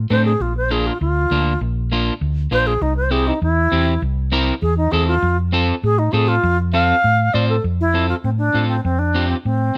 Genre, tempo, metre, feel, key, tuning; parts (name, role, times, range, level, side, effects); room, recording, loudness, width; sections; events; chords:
latin, cumbia; 199 BPM; 4/4; straight; F major; A4 = 440 Hz
hollow-body short-scale fingered electric bass; bass; 0.0-9.7 s; Bb1 to A2; -21 LUFS; equal
bright reedy wooden-headed alto flute; melody; 0.1-9.8 s; C4 to F5; -21 LUFS; equal
electric guitar at the edge of break-up; accompaniment; 0.1-9.8 s; A3 to C5; -24 LUFS; equal
little or no reverb; close, detailed microphones; -18 LUFS; mono
0.0-7.6 A section; 7.6-9.8 B section
alto flute solo 0.0-7.6
0.4 Bb; 2.8 C; 5.2 F